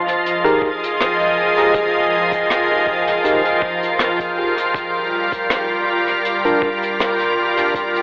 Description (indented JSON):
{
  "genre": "ambient dub",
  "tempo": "80 BPM",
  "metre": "4/4",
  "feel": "swing 54% on 16ths",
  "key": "F dorian",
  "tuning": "A4 = 439 Hz",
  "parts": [
    { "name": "soft additive organ-like pad", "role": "sustained chords", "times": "0.0-8.0 s", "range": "F3 to G5", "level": "-16 LUFS", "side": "equal", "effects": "ensemble chorus, built-in reverb" },
    { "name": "jazz brush drum kit", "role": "drums", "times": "0.1-8.0 s", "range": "hi-hat, rim click", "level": "-25 LUFS", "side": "equal", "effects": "dub echo" },
    { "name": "tine electric piano", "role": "stabs", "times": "0.4-6.7 s", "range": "D4 to Bb4", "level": "-22 LUFS", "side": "equal", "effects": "medium tremolo, dub echo" },
    { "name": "electronic kick drum", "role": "drums", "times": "0.6-7.9 s", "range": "none", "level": "-29 LUFS", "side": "equal", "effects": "none" }
  ],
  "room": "wet lush hall reverb, RT60 3.0 s",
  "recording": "telephone sound",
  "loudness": "-15 LUFS",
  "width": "side -30 dB against mid",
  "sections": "0.0-8.0 A section",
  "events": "none",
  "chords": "0.0 Fm11; 4.7 Gm7"
}